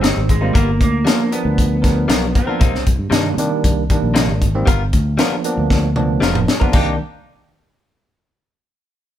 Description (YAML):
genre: straight-eighth soul blues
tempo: 116 BPM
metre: 4/4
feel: straight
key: C minor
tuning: A4 = 440 Hz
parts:
  - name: electric guitar through a small old amp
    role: melody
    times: 0.0-2.8 s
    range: Ab3 to C4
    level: -21 LUFS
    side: right 2 dB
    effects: none
  - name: barky tine electric piano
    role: accompaniment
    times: 0.0-7.0 s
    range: Eb3 to A#4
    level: -21 LUFS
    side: right 2 dB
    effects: medium stereo tremolo
  - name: direct-recorded clean electric guitar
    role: stabs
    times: 0.0-7.0 s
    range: Ab2 to A#4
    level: -24 LUFS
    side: left 5 dB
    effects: none
  - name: fingered electric bass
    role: bass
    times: 0.0-7.0 s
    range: F1 to C3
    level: -19 LUFS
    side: equal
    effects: none
  - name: tight funk drum kit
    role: drums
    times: 0.0-6.9 s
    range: crash cymbal, hi-hat, kick drum, snare drum, toms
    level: -17 LUFS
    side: left 1 dB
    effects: none
room: light reverb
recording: band playing live in one room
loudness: -14 LUFS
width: side -11 dB against mid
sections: 0.0-6.7 A section; 6.7-8.8 B section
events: drum fill 5.7-6.7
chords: 0.0 Abmaj7; 0.5 G7#9; 2.6 Cm7; 4.7 G7#9; 6.7 Cm7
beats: 0.03 | 0.54 1.06 1.57 2.09 | 2.60 3.12 3.64 4.15 | 4.67 5.18 5.70 6.22 | 6.73